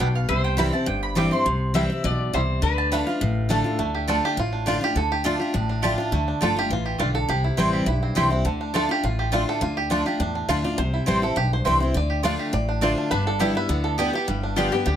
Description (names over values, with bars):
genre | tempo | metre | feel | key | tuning
bluegrass | 206 BPM | 4/4 | straight | D dorian | A4 = 440 Hz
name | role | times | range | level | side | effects
bluegrass banjo | melody | 0.0-15.0 s | D3 to F5 | -27 LUFS | right 3 dB | none
lap resonator guitar | second line | 0.0-3.8, 13.1-15.0 s | D4 to E5 | -29 LUFS | left 4 dB | none
picked steel-string acoustic guitar | accompaniment | 0.0-15.0 s | G2 to G4 | -25 LUFS | left 2 dB | none
mandolin | stabs | 0.0-14.7 s | A3 to D6 | -26 LUFS | right 2 dB | none
upright bass | bass | 0.0-15.0 s | G1 to E2 | -26 LUFS | equal | none
room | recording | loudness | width
light reverb | close, detailed microphones | -20 LUFS | side -10 dB against mid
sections
0.0-3.8 A section; 3.8-13.1 A section; 13.1-15.0 A section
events
mandolin solo 0.0-3.8; five-string banjo solo 3.8-15.0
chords
0.3 C; 2.6 Dm; 7.3 C; 8.5 Dm; 10.8 C; 12.0 Dm; 13.1 G